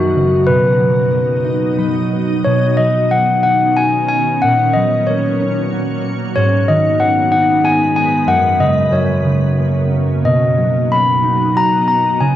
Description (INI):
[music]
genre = children's music, lullaby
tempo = 93 BPM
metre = 3/4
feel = rubato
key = B major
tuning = A4 = 440 Hz
[part]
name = handbells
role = melody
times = 0.0-12.4 s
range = F#4 to B5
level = -15 LUFS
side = left 2 dB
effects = none
[part]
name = concert harp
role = accompaniment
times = 0.0-12.4 s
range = F#2 to B5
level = -16 LUFS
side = right 1 dB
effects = none
[part]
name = shimmering ambient pad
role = sustained chords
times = 0.0-12.4 s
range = F#2 to D#4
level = -20 LUFS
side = right 2 dB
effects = chorus, built-in reverb
[sound]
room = light reverb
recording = dry, close 1970s-style studio recording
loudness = -12 LUFS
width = side -12 dB against mid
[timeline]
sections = 0.0-2.5 A section; 2.5-12.4 B section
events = harp fill 1.4-2.5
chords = 0.5 B; 2.5 Badd9; 4.4 F#/A#; 6.4 G#m; 8.3 F#sus4; 8.9 F#; 10.2 B